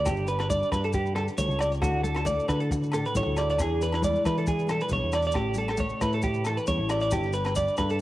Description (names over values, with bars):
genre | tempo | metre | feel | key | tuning
highlife guitar band | 136 BPM | 4/4 | straight | D major | A4 = 436 Hz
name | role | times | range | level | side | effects
nylon-string guitar | accompaniment | 0.0-8.0 s | A2 to C#5 | -35 LUFS | left 4 dB | cassette tape
clean electric guitar | arpeggios | 0.0-8.0 s | F#4 to D5 | -27 LUFS | right 2 dB | analog chorus, cassette tape, analog delay
fingered electric bass | bass | 0.0-8.0 s | G1 to E3 | -29 LUFS | equal | none
compact cocktail drum kit | drums | 0.1-8.0 s | hi-hat, kick drum, rim click | -34 LUFS | equal | cassette tape
agogo bells | percussion | 0.1-7.9 s | none | -40 LUFS | left 3 dB | none
congas | percussion | 0.1-7.9 s | none | -38 LUFS | left 2 dB | none
maracas | percussion | 0.1-7.9 s | none | -43 LUFS | left 3 dB | none
room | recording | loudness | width
light reverb, studio reverb | home recording on cassette | -24 LUFS | side -15 dB against mid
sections
0.0-8.0 A section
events
none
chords
0.1 G; 1.8 Dadd9; 3.6 E7; 5.4 A; 7.1 G